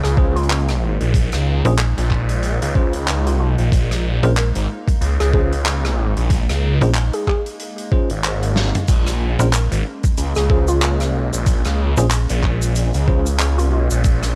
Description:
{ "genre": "glitch hop", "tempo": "93 BPM", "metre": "4/4", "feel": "swing 58% on 16ths", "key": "Bb minor", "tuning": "A4 = 440 Hz", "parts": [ { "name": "woody wave-folded pluck", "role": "melody", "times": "0.0-13.8 s", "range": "F4 to Bb4", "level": "-29 LUFS", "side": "equal", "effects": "analog chorus, analog delay" }, { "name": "warbly tape-like pad", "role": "sustained chords", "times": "0.0-14.4 s", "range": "Ab3 to Eb4", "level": "-34 LUFS", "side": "equal", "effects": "chorus, built-in reverb, phaser, vintage 12-bit sampler grit, sidechain pumping" }, { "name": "phased detuned saw bass", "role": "bass", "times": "0.0-14.4 s", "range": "Ab1 to Db2", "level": "-20 LUFS", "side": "equal", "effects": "phaser, overdrive" }, { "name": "big rock drum kit", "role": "drums", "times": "0.0-14.3 s", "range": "crash cymbal, handclaps, hi-hat, rim click, snare drum, toms", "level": "-28 LUFS", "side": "equal", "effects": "none" }, { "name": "bell-like tine electric piano", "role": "stabs", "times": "0.2-13.2 s", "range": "Db4 to C5", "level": "-29 LUFS", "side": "equal", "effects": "sidechain pumping, analog delay" }, { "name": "electronic kick drum", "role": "drums", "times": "0.2-14.2 s", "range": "none", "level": "-19 LUFS", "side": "equal", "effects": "overdrive" }, { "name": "slap-like FM bass", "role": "bass", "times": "1.6-12.3 s", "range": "Bb1", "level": "-18 LUFS", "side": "equal", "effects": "none" }, { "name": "egg shaker", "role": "percussion", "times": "8.9-14.3 s", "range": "none", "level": "-33 LUFS", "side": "equal", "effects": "none" } ], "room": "small room reverb", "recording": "dry, gritty hardware recording, cassette tape", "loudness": "-18 LUFS", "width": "mono", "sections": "0.0-14.4 A section", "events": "drum fill 8.6-8.9", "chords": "0.0 Bbm7", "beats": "0.50 | 1.14 1.79 2.43 3.08 | 3.72 4.37 5.01 5.66 | 6.30 6.95 7.59 8.24 | 8.88 9.53 10.17 10.82 | 11.46 12.11 12.75 13.40 | 14.04" }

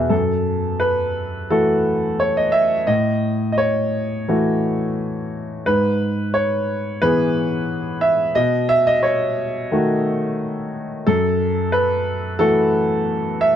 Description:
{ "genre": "neoclassical minimalist piano", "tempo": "88 BPM", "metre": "4/4", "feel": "rubato", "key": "F# dorian", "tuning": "A4 = 438 Hz", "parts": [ { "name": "clear concert grand piano", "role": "solo", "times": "0.0-13.6 s", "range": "E2 to E5", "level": "-17 LUFS", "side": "equal", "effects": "none" } ], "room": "small room ambience", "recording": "dry, close 1970s-style studio recording", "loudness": "-17 LUFS", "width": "side -9 dB against mid", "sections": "0.1-13.6 A section", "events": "none", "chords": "0.1 F#m7; 2.9 A6; 5.7 E/G#; 8.4 B7; 11.1 F#m7", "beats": "| 0.11 0.81 1.51 2.20 | 2.89 3.59 4.28 4.98 | 5.67 6.35 7.03 7.70 | 8.37 9.04 9.71 10.39 | 11.07 11.74 12.39 13.06" }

